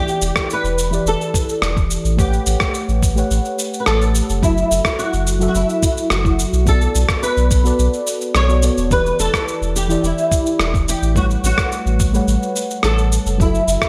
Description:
sunset chillout; 107 BPM; 4/4; straight; E dorian; A4 = 439 Hz
flamenco guitar; melody; 0.0-13.9 s; E4 to C#5; -24 LUFS; equal; ensemble chorus, digital delay
mellow FM electric piano; accompaniment; 0.0-13.9 s; E3 to F#5; -25 LUFS; equal; chorus, low-pass filter, digital delay
electronic cabasa and rim click; drums; 0.1-13.9 s; -25 LUFS; equal; gated reverb
warm sub bass; bass; 0.2-13.8 s; E1 to B1; -20 LUFS; equal; tube saturation
electronic kick drum; drums; 0.4-13.9 s; -22 LUFS; equal
light reverb; bright 1980s-style digital production; -17 LUFS; mono
0.0-13.9 A section
filter sweep on FM electric piano 0.0-13.9
0.0 Em7; 2.2 A13; 4.4 F#m7; 6.7 Bm7; 8.9 Em7; 11.2 A13

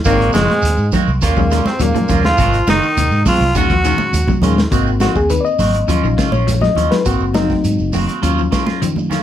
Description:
afrobeat; 103 BPM; 4/4; straight; Ab mixolydian; A4 = 437 Hz
clear trombone section; second line; 0.0-4.4 s; Ab2 to Gb3; -28 LUFS; left 1 dB
shekere; percussion; 0.0-9.2 s; -27 LUFS; right 5 dB
raspy tenor saxophone; melody; 0.1-4.4 s; Ab3 to Gb4; -17 LUFS; equal
clear trombone; second line; 0.1-4.4 s; Ab3 to Gb4; -24 LUFS; right 5 dB
barky reed electric piano; accompaniment; 0.1-9.1 s; Bb2 to Eb5; -19 LUFS; left 5 dB; overdrive
clean electric guitar; arpeggios; 0.1-9.2 s; C3 to Ab3; -24 LUFS; left 7 dB; lush chorus
twangy electric guitar; stabs; 0.1-9.2 s; Eb3 to Gb4; -23 LUFS; right 7 dB; phaser
vintage muted fingered electric bass; bass; 0.1-9.2 s; Gb1 to Eb3; -18 LUFS; equal
crunchy breakbeat drum kit; drums; 0.1-9.2 s; hi-hat, kick drum, snare drum; -20 LUFS; equal
congas; percussion; 0.3-9.2 s; -22 LUFS; right 2 dB
moderate club reverb, RT60 0.5 s; -12 LUFS; side -11 dB against mid
0.0-4.7 A section; 4.7-9.2 B section
reed electric piano solo 4.7-9.2
0.1 Ab9; 1.2 Ebm9; 2.4 Ab9; 3.5 Ebm9; 4.7 Ab9; 5.9 Ebm9; 7.1 Ab9; 8.2 Ebm9

